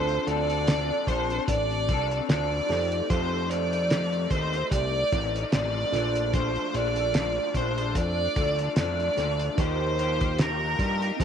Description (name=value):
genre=indie pop, bedroom pop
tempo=74 BPM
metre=4/4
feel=swing 55% on 16ths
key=Bb major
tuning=A4 = 439 Hz
part: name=rich violin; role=melody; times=0.0-11.2 s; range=Bb4 to D5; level=-28 LUFS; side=right 1 dB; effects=analog chorus, slapback echo
part: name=electric guitar through a small old amp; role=accompaniment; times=0.0-11.2 s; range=F2 to A4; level=-32 LUFS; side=left 14 dB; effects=ensemble chorus, vibrato effect
part: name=tine electric piano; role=accompaniment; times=0.0-11.2 s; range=C4 to C5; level=-36 LUFS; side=right 15 dB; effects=medium stereo tremolo
part: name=fat analog bass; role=bass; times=0.0-11.2 s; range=A1 to G2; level=-30 LUFS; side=equal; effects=none
part: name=cloth-damped thuddy drum kit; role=drums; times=0.1-11.2 s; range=hi-hat, kick drum, snare drum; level=-28 LUFS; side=equal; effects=none
room=light reverb, studio reverb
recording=1960s-style stereo with parts hard left and right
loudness=-24 LUFS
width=side -8 dB against mid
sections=0.0-11.2 A section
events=none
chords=0.0 Dm7; 2.7 F7; 5.9 Bbmaj7; 9.6 Ebadd9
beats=0.67 1.48 2.29 | 3.10 3.91 4.72 5.53 | 6.34 7.15 7.96 8.77 | 9.58 10.39 11.20